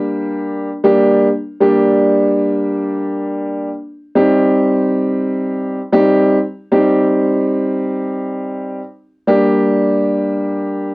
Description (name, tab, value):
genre	hip hop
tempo	94 BPM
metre	4/4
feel	swing 55% on 16ths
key	C minor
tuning	A4 = 441 Hz
part	dark concert grand piano	solo	0.0-10.9 s	G3 to G4	-13 LUFS	equal	cassette tape, high-pass filter, low-pass filter
room	little or no reverb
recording	dry, gritty hardware recording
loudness	-13 LUFS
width	side -23 dB against mid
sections	0.0-4.2 A section; 4.2-10.9 B section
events	none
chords	0.0 Gm; 4.2 Cm; 9.3 Gm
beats	0.34 0.97 | 1.61 2.25 2.89 3.53 | 4.17 4.80 5.44 6.08 | 6.72 7.36 8.00 8.63 | 9.27 9.91 10.55